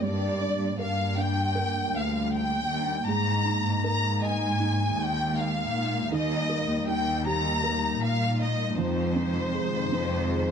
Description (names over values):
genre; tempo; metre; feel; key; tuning
pop ballad; 79 BPM; 4/4; straight; unclear; A4 = 439 Hz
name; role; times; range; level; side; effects
dark studio violin section; melody; 0.0-10.5 s; C5 to Bb5; -29 LUFS; left 1 dB; none
felt-muted upright piano; accompaniment; 0.0-10.5 s; Eb3 to Eb5; -32 LUFS; right 5 dB; none
airy breathy pad; sustained chords; 0.0-10.5 s; C3 to Eb4; -33 LUFS; equal; chorus
warm studio cello section; bass; 0.0-10.5 s; D2 to Bb2; -29 LUFS; left 1 dB; none
room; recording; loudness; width
light reverb, studio ambience; dark, warm production; -24 LUFS; side -7 dB against mid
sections
0.0-10.5 A section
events
none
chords
0.0 Gm; 3.1 Absus2; 6.1 Eb; 8.8 Fm7